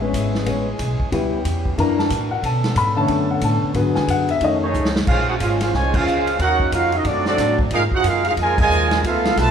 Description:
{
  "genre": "jazz, big band swing",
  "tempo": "182 BPM",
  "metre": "4/4",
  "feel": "swing 62% on 8ths",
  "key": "Bb minor from 5.1 s",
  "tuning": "A4 = 440 Hz",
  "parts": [
    { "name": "warm upright piano", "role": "accompaniment", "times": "0.0-4.7 s", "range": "D3 to B5", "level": "-20 LUFS", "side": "left 3 dB", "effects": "none" },
    { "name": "bright trombone section", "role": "sustained chords", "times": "0.0-9.5 s", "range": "Bb2 to A#4", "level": "-29 LUFS", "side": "equal", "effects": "none" },
    { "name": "upright bass", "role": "bass", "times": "0.0-9.5 s", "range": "G#1 to B2", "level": "-23 LUFS", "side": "equal", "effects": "none" },
    { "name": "vintage drum kit", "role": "drums", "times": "0.1-9.5 s", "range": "crash cymbal, hi-hat, kick drum, ride cymbal, snare drum", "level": "-25 LUFS", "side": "equal", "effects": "none" },
    { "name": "dark trumpet section", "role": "melody", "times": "4.6-9.5 s", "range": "A3 to A5", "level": "-19 LUFS", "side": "right 1 dB", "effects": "none" },
    { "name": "bright trombone section", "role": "second line", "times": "4.6-9.5 s", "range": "Bb2 to Gb4", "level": "-24 LUFS", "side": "right 5 dB", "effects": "none" }
  ],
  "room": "moderate large studio reverb, RT60 1.3 s",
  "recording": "band playing live in one room",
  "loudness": "-16 LUFS",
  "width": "side -8 dB against mid",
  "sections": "0.0-5.1 A section; 5.1-9.5 B section",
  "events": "upright piano solo 0.0-5.1; drum fill 4.7-5.1; band accent 5.9, 8.5",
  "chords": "0.0 Amaj7; 1.1 C#m7b5; 1.8 F#7alt; 2.4 Bm9; 3.8 G#m7b5; 4.4 F7alt; 5.1 Bbm9; 6.4 Ebm7; 7.1 D7; 7.7 Db69"
}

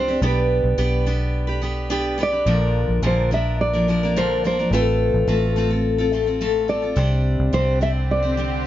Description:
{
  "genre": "acoustic pop",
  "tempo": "107 BPM",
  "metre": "4/4",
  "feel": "straight",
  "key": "unclear",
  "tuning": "A4 = 440 Hz",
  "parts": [
    { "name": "nylon-string guitar", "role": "melody", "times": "0.0-8.6 s", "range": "B4 to E5", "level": "-23 LUFS", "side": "right 2 dB", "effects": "none" },
    { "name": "picked steel-string acoustic guitar", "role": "accompaniment", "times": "0.0-8.7 s", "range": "Bb2 to C5", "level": "-22 LUFS", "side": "left 2 dB", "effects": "none" },
    { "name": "vintage muted fingered electric bass", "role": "bass", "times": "0.0-8.7 s", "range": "A1 to C2", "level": "-22 LUFS", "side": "equal", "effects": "none" },
    { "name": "shimmering ambient pad", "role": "sustained chords", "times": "7.5-8.7 s", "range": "D3 to G4", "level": "-31 LUFS", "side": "equal", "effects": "chorus, built-in reverb" }
  ],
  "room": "light reverb",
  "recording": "nothing above 7.5 kHz",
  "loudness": "-18 LUFS",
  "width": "side -13 dB against mid",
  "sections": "0.0-8.7 A section",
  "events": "none",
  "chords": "0.2 G/B; 2.5 Bb; 4.7 F/A; 7.0 Csus2"
}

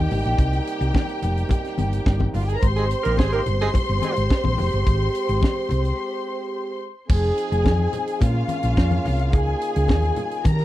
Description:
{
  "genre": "disco",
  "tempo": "107 BPM",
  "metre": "4/4",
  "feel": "straight",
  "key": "unclear",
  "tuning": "A4 = 440 Hz",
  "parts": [
    { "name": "dark studio string section", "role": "second line", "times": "0.0-10.6 s", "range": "F4 to C6", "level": "-26 LUFS", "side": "equal", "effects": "tape echo" },
    { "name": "warm French horn section", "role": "sustained chords", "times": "0.0-10.6 s", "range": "C3 to Ab4", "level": "-29 LUFS", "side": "right 1 dB", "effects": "none" },
    { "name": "hollow-body short-scale fingered electric bass", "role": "bass", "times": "0.0-10.6 s", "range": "F1 to Eb3", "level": "-22 LUFS", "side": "equal", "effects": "none" },
    { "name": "tight funk drum kit", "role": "drums", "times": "0.1-10.6 s", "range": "crash cymbal, hi-hat, kick drum, snare drum", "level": "-21 LUFS", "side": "equal", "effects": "none" },
    { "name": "congas", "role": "percussion", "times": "0.1-10.6 s", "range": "none", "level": "-30 LUFS", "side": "left 4 dB", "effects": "none" },
    { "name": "warm horn section", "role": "stabs", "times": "2.8-4.1 s", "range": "Ab3 to C5", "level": "-25 LUFS", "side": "right 4 dB", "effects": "none" }
  ],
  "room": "small room ambience",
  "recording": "dry, close 1970s-style studio recording",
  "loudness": "-19 LUFS",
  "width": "side -14 dB against mid",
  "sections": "0.0-7.1 A section; 7.1-10.6 B section",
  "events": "break 6.0-7.1",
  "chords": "0.0 Fm11 (rootless); 7.1 Fm7; 8.2 Bbm7; 9.3 Db69"
}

